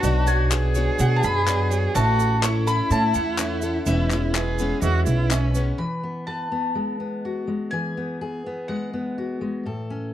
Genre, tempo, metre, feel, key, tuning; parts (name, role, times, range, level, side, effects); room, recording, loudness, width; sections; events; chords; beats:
indie folk with a building arrangement; 125 BPM; 4/4; straight; E mixolydian; A4 = 445 Hz
mandolin; melody; 0.0-9.4 s; E5 to C#6; -27 LUFS; left 2 dB; slapback echo
dark cello; second line; 0.0-5.8 s; C#4 to G#4; -27 LUFS; right 4 dB
dark upright piano; accompaniment; 0.0-5.8 s; A1 to E5; -31 LUFS; right 5 dB
picked plugged-in steel-string acoustic guitar; accompaniment; 0.0-5.8 s; E2 to C#5; -29 LUFS; left 6 dB
upright bass; bass; 0.0-5.7 s; E1 to B2; -22 LUFS; equal
tube shaker; percussion; 0.0-5.7 s; -36 LUFS; right 12 dB
group handclap; percussion; 0.5-5.4 s; -27 LUFS; left 5 dB
fingerpicked steel-string acoustic guitar; accompaniment; 5.8-10.1 s; A2 to B4; -27 LUFS; left 2 dB
light reverb, small room ambience; dark, warm production; -21 LUFS; side -12 dB against mid
0.0-5.8 A section; 5.8-10.1 B section
0.0 Bmadd9; 1.9 A; 3.9 E6; 5.8 Eadd9
| 0.03 0.51 0.99 1.47 | 1.95 2.42 2.90 3.38 | 3.86 4.34 4.82 5.30 | 5.79 6.27 6.75 7.24 | 7.72 8.21 8.69 9.18 | 9.66